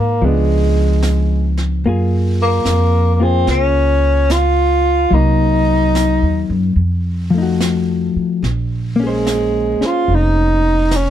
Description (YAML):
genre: jazz ballad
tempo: 73 BPM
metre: 4/4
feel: swing 67% on 8ths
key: unclear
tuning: A4 = 442 Hz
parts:
  - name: breathy tenor saxophone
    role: melody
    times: 0.0-11.1 s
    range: Ab3 to F4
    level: -16 LUFS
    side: right 1 dB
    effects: none
  - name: hollow-body jazz guitar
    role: accompaniment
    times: 0.0-11.1 s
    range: F3 to C5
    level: -20 LUFS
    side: left 4 dB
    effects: none
  - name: upright bass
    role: bass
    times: 0.0-11.1 s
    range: F1 to Ab2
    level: -16 LUFS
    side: equal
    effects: none
  - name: jazz brush drum kit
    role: drums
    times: 0.2-11.1 s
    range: brushed snare drum, hi-hat, snare drum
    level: -27 LUFS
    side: right 2 dB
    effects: none
room: little or no reverb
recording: dark, warm production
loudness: -13 LUFS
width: side -10 dB against mid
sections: 0.0-11.1 A section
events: none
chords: 0.2 Db7b9; 1.8 Gbmaj9; 5.1 Cm7b5; 6.8 F7b9; 8.4 Bbm9